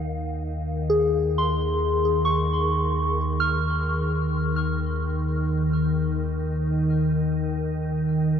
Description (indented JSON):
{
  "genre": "ambient",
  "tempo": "free time",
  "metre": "none",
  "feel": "none",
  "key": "unclear",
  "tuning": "A4 = 440 Hz",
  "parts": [
    { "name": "soft synth bell", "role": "arpeggios", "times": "0.0-8.4 s", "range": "Ab4 to F6", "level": "-25 LUFS", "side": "left 1 dB", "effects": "chorus, phaser, ping-pong delay" },
    { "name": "deep rumbling drone", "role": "bass", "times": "0.0-8.4 s", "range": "Eb2", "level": "-28 LUFS", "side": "right 1 dB", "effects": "built-in reverb, tube saturation" },
    { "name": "organ-like drone", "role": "drone", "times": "0.0-8.4 s", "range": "Eb3", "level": "-25 LUFS", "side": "equal", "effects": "ensemble chorus, built-in reverb" }
  ],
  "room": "wet huge ambient reverb, RT60 8.1 s",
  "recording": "nothing above 7.5 kHz",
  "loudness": "-22 LUFS",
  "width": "side -8 dB against mid",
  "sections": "0.0-8.4 A section",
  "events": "none",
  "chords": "0.0 Gbsus2/Eb"
}